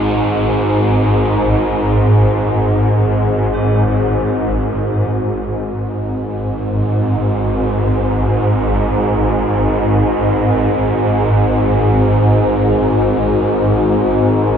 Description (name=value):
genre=dark ambient drone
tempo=free time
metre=none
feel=none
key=unclear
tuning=A4 = 440 Hz
part: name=tubular bells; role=arpeggios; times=0.0-4.4 s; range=C#4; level=-38 LUFS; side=equal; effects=none
part: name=swarming drone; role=drone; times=0.0-14.6 s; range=G#1 to G#2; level=-13 LUFS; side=equal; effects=built-in reverb
room=wet huge ambient reverb, RT60 7.1 s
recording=none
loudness=-13 LUFS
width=side -8 dB against mid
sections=0.0-4.1 A section; 4.1-14.6 B section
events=none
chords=0.0 G#7sus4; 4.1 N.C.